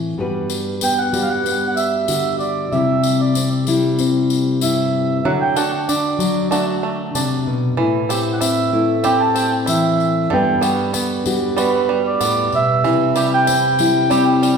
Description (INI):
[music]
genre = acoustic folk duo or small band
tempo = 95 BPM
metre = 4/4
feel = straight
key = G major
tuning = A4 = 441 Hz
[part]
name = nylon-string guitar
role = accompaniment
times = 0.0-14.6 s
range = G2 to B4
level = -18 LUFS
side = left 3 dB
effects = none
[part]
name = tambourine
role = percussion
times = 0.5-14.6 s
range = none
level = -27 LUFS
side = left 5 dB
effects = none
[part]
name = mellow accordion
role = second line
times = 0.8-14.2 s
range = B4 to A5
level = -19 LUFS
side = right 4 dB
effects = none
[part]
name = bluegrass banjo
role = arpeggios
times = 5.3-14.6 s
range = D3 to G4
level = -23 LUFS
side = right 6 dB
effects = none
[sound]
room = wet recital hall reverb, RT60 1.7 s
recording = recorded in a church or concert hall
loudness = -15 LUFS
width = side -6 dB against mid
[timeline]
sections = 0.0-14.6 A section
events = accordion solo 0.0-14.6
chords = 0.2 Gmaj7; 2.7 C; 5.3 D; 7.8 Am7; 10.3 Gmaj7; 12.8 C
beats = | 0.19 0.82 1.46 2.09 | 2.72 3.35 3.99 4.62 | 5.25 5.89 6.52 7.15 | 7.79 8.42 9.05 9.69 | 10.32 10.95 11.58 12.21 | 12.85 13.48 14.11